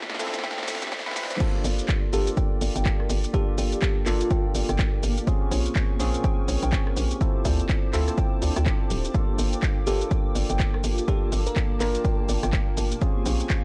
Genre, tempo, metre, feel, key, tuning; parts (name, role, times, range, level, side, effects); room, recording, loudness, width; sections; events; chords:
deep house; 124 BPM; 4/4; swing 59% on 16ths; G minor; A4 = 442 Hz
hollow soft pad; sustained chords; 0.0-13.6 s; F3 to D6; -42 LUFS; equal; ensemble chorus, sidechain pumping
bell-like tine electric piano; stabs; 0.0-13.6 s; Bb3 to B4; -34 LUFS; equal; vintage 12-bit sampler grit, sidechain pumping, analog delay
punchy analog drum machine; drums; 0.0-13.6 s; crash cymbal, handclaps, hi-hat, rim click, shaker, snare drum; -35 LUFS; equal
riser; sound effects; 0.0-1.4 s; -40 LUFS; equal
granular cloud pad; texture; 0.3-13.6 s; Bb3 to Ab5; -40 LUFS; equal
warbly dusty pluck; arpeggios; 0.2-13.3 s; G4 to G5; -40 LUFS; equal; subtle chorus, vintage 12-bit sampler grit, sidechain pumping, analog delay
electronic kick drum; drums; 0.4-13.6 s; -27 LUFS; equal; high-pass filter on kick
hollow knocking FM bass; bass; 1.6-13.4 s; D1 to D2; -28 LUFS; equal; sidechain pumping
bell-like FM electric piano; melody; 2.1-4.4, 9.9-12.3 s; F4 to Bb4; -33 LUFS; equal; chorus, vintage 12-bit sampler grit, analog delay
digital ambience; dry, gritty hardware recording, transformer saturation, cassette tape, high-pass filter; -25 LUFS; mono
0.0-1.4 A section; 1.4-13.6 B section
build-up 0.0-1.4; drum fill 0.0-1.4; riser 0.0-1.4; filter sweep on tine electric piano 0.0-1.4; filter sweep on synth pluck 0.0-1.4; drop 1.4-13.6
0.0 Dm7; 1.4 Gm7; 5.3 Bbm7; 7.2 Dm7; 9.1 Gm7; 13.0 Bbm7